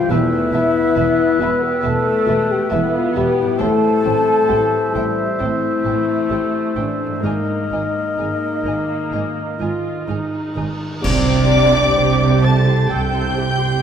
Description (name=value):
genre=cinematic, emotional film score for orchestra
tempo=62-70 BPM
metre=4/4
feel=rubato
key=unclear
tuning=A4 = 438 Hz
part: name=mellow clarinet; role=second line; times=0.0-10.7 s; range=Bb4 to C5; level=-26 LUFS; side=left 2 dB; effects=none
part: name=mellow hollow large flute ensemble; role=second line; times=0.0-13.8 s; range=D5 to B5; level=-25 LUFS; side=equal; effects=none
part: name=warm oboe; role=second line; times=0.0-13.8 s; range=D5 to A5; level=-27 LUFS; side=right 2 dB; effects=none
part: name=dark concert grand piano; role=accompaniment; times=0.0-13.8 s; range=C2 to C5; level=-26 LUFS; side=equal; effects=none
part: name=muted studio viola section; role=accompaniment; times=0.0-13.8 s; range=E3 to A4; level=-26 LUFS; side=right 3 dB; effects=none
part: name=dark French horn section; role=sustained chords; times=0.0-13.8 s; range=D4 to B4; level=-21 LUFS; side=left 4 dB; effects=none
part: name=concert harp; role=arpeggios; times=0.0-13.8 s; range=Ab2 to C6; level=-30 LUFS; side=left 7 dB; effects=none
part: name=muted studio violin section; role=melody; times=0.1-13.8 s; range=A5 to A6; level=-26 LUFS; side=left 3 dB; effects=none
part: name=muted studio violin section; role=second line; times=0.1-13.8 s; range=B4 to A5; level=-28 LUFS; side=left 4 dB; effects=none
part: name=muted studio cello section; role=bass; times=0.1-13.7 s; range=E2 to C3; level=-24 LUFS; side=right 3 dB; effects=none
part: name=muted studio double bass section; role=bass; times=0.1-13.7 s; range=E1 to C2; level=-24 LUFS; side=right 4 dB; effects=none
part: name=cymbal swell, clash cymbals and concert bass drum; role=percussion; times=7.2-12.9 s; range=none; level=-26 LUFS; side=equal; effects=none
room=wet concert hall reverb, RT60 2.1 s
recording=none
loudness=-15 LUFS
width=side -8 dB against mid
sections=0.0-11.0 A section; 11.0-13.8 B section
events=band accent 11.0-12.0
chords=0.1 Esus4; 3.6 Am7; 7.2 Absus2; 11.0 Csus2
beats=| 0.11 0.97 1.85 2.72 | 3.60 4.50 5.40 6.30 | 7.24 8.19 9.13 10.08 | 11.03 11.97 12.90 13.81